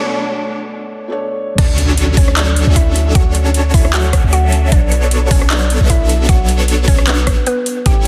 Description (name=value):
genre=future bass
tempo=153 BPM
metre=4/4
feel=swing 55% on 16ths, half-time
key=unclear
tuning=A4 = 440 Hz
part: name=felt-muted upright piano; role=accompaniment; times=0.0-1.6 s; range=B2 to C#5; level=-24 LUFS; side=equal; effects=sidechain pumping, delay
part: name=mallet-like synth pluck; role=melody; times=1.6-8.0 s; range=B3 to G5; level=-24 LUFS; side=equal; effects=chorus, sidechain pumping, delay
part: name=supersaw chords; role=riff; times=1.6-8.1 s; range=F#3 to E5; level=-23 LUFS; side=equal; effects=phaser, sidechain pumping
part: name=warm 808-style bass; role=bass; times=1.6-8.1 s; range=A1 to D2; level=-16 LUFS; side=equal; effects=sidechain pumping
part: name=electronic kick drum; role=drums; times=1.6-7.9 s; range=none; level=-14 LUFS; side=equal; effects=none
part: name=trap drum kit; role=drums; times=1.6-8.1 s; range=crash cymbal, handclaps, hi-hat, rim click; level=-23 LUFS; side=equal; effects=overdrive
part: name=impact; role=sound effects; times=1.6-3.2 s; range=none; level=-27 LUFS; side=equal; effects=none
room=light reverb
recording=dense, heavily limited modern master, high-pass filter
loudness=-13 LUFS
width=mono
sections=0.0-1.6 A section; 1.6-8.1 B section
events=build-up 0.0-1.6; filter sweep 0.0-1.6; break 0.0-1.6; drop 1.6-8.1; impact 1.6-3.2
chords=0.0 Bm9; 1.6 Dmaj7; 4.7 Bm9